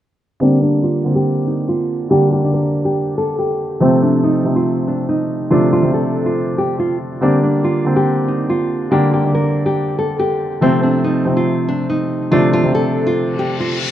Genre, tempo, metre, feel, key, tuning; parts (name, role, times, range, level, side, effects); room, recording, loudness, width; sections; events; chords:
hip hop; 141 BPM; 4/4; half-time; G minor; A4 = 438 Hz
nylon-string guitar; melody; 0.4-13.8 s; C4 to Bb4; -18 LUFS; right 1 dB; low-pass filter
dark concert grand piano; accompaniment; 0.4-13.9 s; C3 to D4; -16 LUFS; equal; low-pass filter
reverse cymbal; sound effects; 13.4-13.9 s; -23 LUFS; left 5 dB
light reverb, small room reverb; rough home demo mix; -14 LUFS; side -11 dB against mid
0.4-13.9 A section
filter sweep 0.4-13.9; reverse cymbal 13.4-13.9
0.4 Gm; 3.8 F; 7.2 Gm; 10.6 F